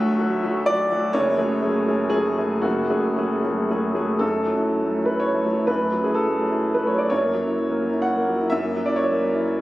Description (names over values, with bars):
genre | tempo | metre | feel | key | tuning
neoclassical minimalist piano | 113-130 BPM | 3/4 | rubato | F# minor | A4 = 440 Hz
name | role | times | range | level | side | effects
warm concert grand piano | solo | 0.0-9.6 s | F#1 to F#5 | -20 LUFS | equal | none
room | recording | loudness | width
moderate recital hall reverb, RT60 1.4 s | recorded on a phone in the room, club reverb | -20 LUFS | side -16 dB against mid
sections
0.0-4.2 A section; 4.2-9.6 B section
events
none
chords
0.0 D; 1.1 F#madd9; 4.2 F#m7; 7.1 F#7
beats
0.18 0.66 | 1.14 1.63 2.13 | 2.65 3.17 3.70 | 4.22 4.72 5.21 | 5.69 6.16 6.63 | 7.11 7.58 8.05 | 8.53 9.00 9.46